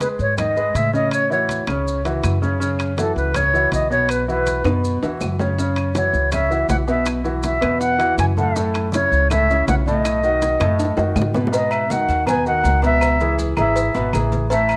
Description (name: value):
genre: latin, salsa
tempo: 161 BPM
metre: 4/4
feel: straight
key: unclear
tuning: A4 = 441 Hz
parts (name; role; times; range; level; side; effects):
- concert flute; melody; 0.0-14.8 s; A4 to G#5; -22 LUFS; equal; cassette tape
- clear concert grand piano; accompaniment; 0.0-14.8 s; A2 to D#5; -25 LUFS; equal; cassette tape
- congas; percussion; 0.0-14.8 s; none; -32 LUFS; equal; none
- maracas; percussion; 0.0-14.8 s; none; -41 LUFS; equal; none
- timbales and agogo bells; percussion; 0.0-14.8 s; none; -30 LUFS; equal; none
- upright bass; bass; 0.2-14.8 s; G#1 to A2; -25 LUFS; equal; none
- claves; percussion; 0.4-14.8 s; none; -37 LUFS; equal; none
- bongos and cowbell; percussion; 5.6-14.8 s; none; -32 LUFS; equal; none
room: moderate spring reverb, RT60 1.2 s, small room ambience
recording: home recording on cassette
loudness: -19 LUFS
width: mono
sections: 0.0-11.5 A section; 11.5-14.8 B section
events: drum fill 4.7-5.6, 10.6-11.5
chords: 0.0 G#madd11; 1.1 A6; 2.6 Bsus4; 7.1 B7sus4; 8.6 F#m7; 10.0 B7; 11.5 G#m7; 13.0 C#m7